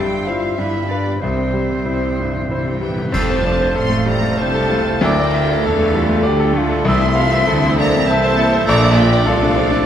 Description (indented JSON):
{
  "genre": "classical, romantic movement for piano and orchestra",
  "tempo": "90-102 BPM",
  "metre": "3/4",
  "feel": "rubato",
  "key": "C major, F major from 3.1 s",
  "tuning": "A4 = 439 Hz",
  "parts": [
    { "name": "bright concert grand piano", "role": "melody", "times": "0.0-9.9 s", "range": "Bb1 to F5", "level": "-19 LUFS", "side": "left 2 dB", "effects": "none" },
    { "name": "warm studio violin section", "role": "melody", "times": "0.0-9.9 s", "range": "E5 to C6", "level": "-26 LUFS", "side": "left 2 dB", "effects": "none" },
    { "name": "clear oboe", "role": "second line", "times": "0.0-8.9 s", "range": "C5 to C6", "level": "-28 LUFS", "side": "right 1 dB", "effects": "none" },
    { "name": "hollow concert flute", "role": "second line", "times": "0.0-9.9 s", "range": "A4 to G5", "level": "-26 LUFS", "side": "left 2 dB", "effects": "none" },
    { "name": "mellow clarinet", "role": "second line", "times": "0.0-8.9 s", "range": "A4 to F5", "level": "-30 LUFS", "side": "equal", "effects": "none" },
    { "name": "warm studio violin section", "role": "second line", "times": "0.0-9.9 s", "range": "D4 to G5", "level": "-27 LUFS", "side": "right 1 dB", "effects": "none" },
    { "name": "warm bassoon", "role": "accompaniment", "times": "0.0-9.9 s", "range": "G3 to G4", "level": "-25 LUFS", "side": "right 1 dB", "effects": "none" },
    { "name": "warm studio viola section", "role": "accompaniment", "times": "0.0-9.9 s", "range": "G3 to G4", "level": "-28 LUFS", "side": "right 3 dB", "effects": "none" },
    { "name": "mellow French horn section", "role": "sustained chords", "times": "0.0-9.9 s", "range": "C4 to A4", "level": "-26 LUFS", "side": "left 3 dB", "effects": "none" },
    { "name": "dark studio double bass section", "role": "bass", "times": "0.0-9.9 s", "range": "F1 to E2", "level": "-25 LUFS", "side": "right 3 dB", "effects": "none" },
    { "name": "rich studio cello section", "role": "bass", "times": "0.0-9.9 s", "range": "F2 to E3", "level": "-26 LUFS", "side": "right 2 dB", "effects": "none" },
    { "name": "timpani", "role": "percussion", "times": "1.2-3.1, 6.9-7.7 s", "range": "C3", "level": "-30 LUFS", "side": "equal", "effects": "none" },
    { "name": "bright trombone section", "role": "sustained chords", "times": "3.1-9.9 s", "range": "A2 to A3", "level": "-28 LUFS", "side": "right 4 dB", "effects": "none" },
    { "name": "dark trumpet section", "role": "stabs", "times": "3.1-9.9 s", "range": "D5 to F5", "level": "-27 LUFS", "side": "right 3 dB", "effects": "none" },
    { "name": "clash cymbals and concert bass drum", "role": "percussion", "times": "3.1-4.4 s", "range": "none", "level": "-28 LUFS", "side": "equal", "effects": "none" },
    { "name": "mellow tuba", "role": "bass", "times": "3.2-9.9 s", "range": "F1 to E2", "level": "-24 LUFS", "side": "right 4 dB", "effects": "none" }
  ],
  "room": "moderate scoring stage reverb, RT60 2.0 s",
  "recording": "none",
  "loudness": "-14 LUFS",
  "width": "side -9 dB against mid",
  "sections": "0.0-3.1 A section; 3.1-9.9 B section",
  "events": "timpani fill 1.2-3.1; band accent 3.1-3.8",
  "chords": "0.0 C/G; 0.6 G7; 1.2 C; 3.1 F; 5.0 Dm; 6.9 Am/C; 8.7 Bbmaj7",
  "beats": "0.57 | 1.21 1.87 2.50 | 3.14 3.78 4.41 | 5.04 5.66 6.28 | 6.89 7.49 8.08 | 8.67 9.27"
}